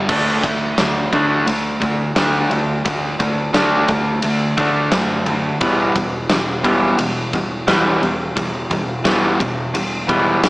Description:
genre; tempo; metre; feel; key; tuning
quiet-loud alternative rock; 87 BPM; 4/4; straight; unclear; A4 = 440 Hz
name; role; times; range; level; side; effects
fuzz guitar; riff; 0.0-10.5 s; E2 to D4; -20 LUFS; equal; distortion
hollow-body short-scale picked electric bass; bass; 0.0-10.5 s; E1 to F#2; -29 LUFS; equal; none
electric guitar through a small old amp; arpeggios; 0.1-10.5 s; D3 to D4; -20 LUFS; equal; none
huge arena drum kit; drums; 0.1-10.5 s; crash cymbal, kick drum, ride cymbal, snare drum; -20 LUFS; equal; none
room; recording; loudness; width
moderate plate reverb, RT60 2.2 s; small speaker sound; -15 LUFS; side -22 dB against mid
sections
0.1-10.5 A section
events
none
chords
0.1 D5; 5.6 Em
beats
| 0.09 0.78 1.47 2.16 | 2.85 3.54 4.23 4.92 | 5.61 6.30 6.99 7.68 | 8.37 9.06 9.75 10.43

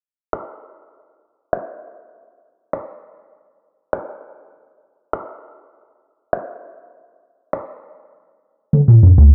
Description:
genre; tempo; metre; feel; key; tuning
pop; 100 BPM; 4/4; straight; none; none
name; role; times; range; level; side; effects
pop drum kit; drums; 0.3-9.3 s; finger snaps, toms; -14 LUFS; equal; overdrive
room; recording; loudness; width
little or no reverb; low-pass filter; -18 LUFS; mono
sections
0.0-9.3 A section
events
filter sweep 0.0-9.3; drum fill 8.7-9.3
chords
none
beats
0.33 0.93 1.53 | 2.13 2.73 3.33 3.93 | 4.53 5.13 5.73 6.33 | 6.93 7.53 8.13 8.73

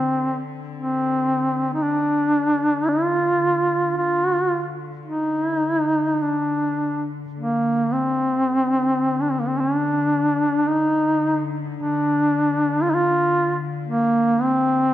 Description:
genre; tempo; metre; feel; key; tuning
caucasian folk, Caucasian lament; 55 BPM; 3/4; rubato; D phrygian; A4 = 440 Hz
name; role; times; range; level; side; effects
warm duduk; melody; 0.0-14.9 s; Bb3 to F4; -19 LUFS; equal; none
warm studio cello section; drone; 0.0-14.9 s; D3; -30 LUFS; left 4 dB; none
room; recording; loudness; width
moderate scoring stage reverb, RT60 2.0 s; dark, warm production; -19 LUFS; side -13 dB against mid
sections
0.0-7.4 A section; 7.4-14.9 B section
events
none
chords
none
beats
| 0.72 1.78 2.86 | 3.94 5.04 6.20 | 7.36 8.49 9.59 | 10.68 11.76 12.82 | 13.88

